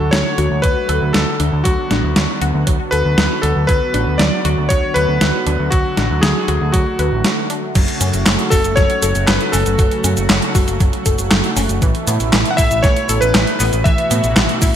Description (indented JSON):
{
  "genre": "synthwave",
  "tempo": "118 BPM",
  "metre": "4/4",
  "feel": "straight",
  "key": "F# minor",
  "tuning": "A4 = 442 Hz",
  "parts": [
    { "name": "clear electric grand piano", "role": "melody", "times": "0.0-14.8 s", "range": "F#4 to F#5", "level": "-20 LUFS", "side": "left 1 dB", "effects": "digital delay" },
    { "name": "warm analog pad", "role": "sustained chords", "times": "0.0-14.8 s", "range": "B2 to F#4", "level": "-22 LUFS", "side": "right 1 dB", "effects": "chorus, sidechain pumping" },
    { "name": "analog pluck", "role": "arpeggios", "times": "0.0-14.8 s", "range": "E3 to B4", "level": "-24 LUFS", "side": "left 1 dB", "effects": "chorus, digital delay" },
    { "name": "overdriven picked electric bass", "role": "bass", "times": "0.0-14.7 s", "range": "F#1 to A2", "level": "-18 LUFS", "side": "equal", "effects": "tube saturation, sidechain pumping" },
    { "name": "detuned 8-bit digital drum machine", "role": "drums", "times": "0.1-14.7 s", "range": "crash cymbal, handclaps, hi-hat, shaker, snare drum", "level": "-19 LUFS", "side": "equal", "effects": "gated reverb" },
    { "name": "electronic kick drum", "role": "drums", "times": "0.6-14.7 s", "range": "none", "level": "-16 LUFS", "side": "equal", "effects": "none" },
    { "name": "soft synth bell", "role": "second line", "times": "8.5-14.8 s", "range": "A4 to F#5", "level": "-25 LUFS", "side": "left 1 dB", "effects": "none" }
  ],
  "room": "light reverb",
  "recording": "bright 1980s-style digital production",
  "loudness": "-13 LUFS",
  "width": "side -9 dB against mid",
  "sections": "0.0-7.8 A section; 7.8-14.8 B section",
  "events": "break 7.2-7.8",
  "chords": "0.0 D; 7.8 F#m; 11.8 Asus2"
}